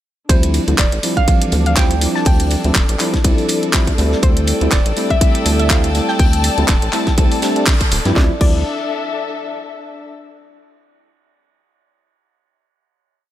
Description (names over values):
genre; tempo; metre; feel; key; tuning
deep house; 122 BPM; 4/4; swing 56% on 16ths; D minor; A4 = 440 Hz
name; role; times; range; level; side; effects
soft round pluck; melody; 0.3-8.6 s; C5 to A5; -24 LUFS; equal; chorus, tape echo
tine electric piano; stabs; 0.3-8.6 s; E3 to E4; -21 LUFS; right 1 dB; wide subtle chorus, sidechain pumping, analog delay
rubbery square bass; bass; 0.3-8.6 s; D1 to G2; -18 LUFS; equal; sidechain pumping
damped 70s drum kit; drums; 0.3-8.2 s; hi-hat, ride cymbal, snare drum; -30 LUFS; right 2 dB; high-pass filter on cymbals, high-pass filter on hats, high-pass filter on snare, high-pass filter on room
electronic kick drum; drums; 0.3-8.5 s; none; -15 LUFS; equal; none
house drum kit; drums; 0.3-8.5 s; crash cymbal, handclaps, hi-hat, snare drum; -21 LUFS; equal; none
dark studio string section; texture; 0.3-10.1 s; D4 to A5; -24 LUFS; left 3 dB; sidechain pumping
rich chamber violin section; texture; 4.2-8.2 s; G5 to E6; -29 LUFS; equal; none
room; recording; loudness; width
light reverb, small room ambience; none; -13 LUFS; side -12 dB against mid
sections
0.3-8.2 drop; 8.2-10.1 final chord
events
drop 0.3-8.2; band accent 7.7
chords
0.3 Dm11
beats
| 0.29 0.79 1.28 1.77 | 2.26 2.75 3.25 3.74 | 4.23 4.72 5.21 5.70 | 6.20 6.69 7.18 7.67 | 8.16 8.65 9.15 9.64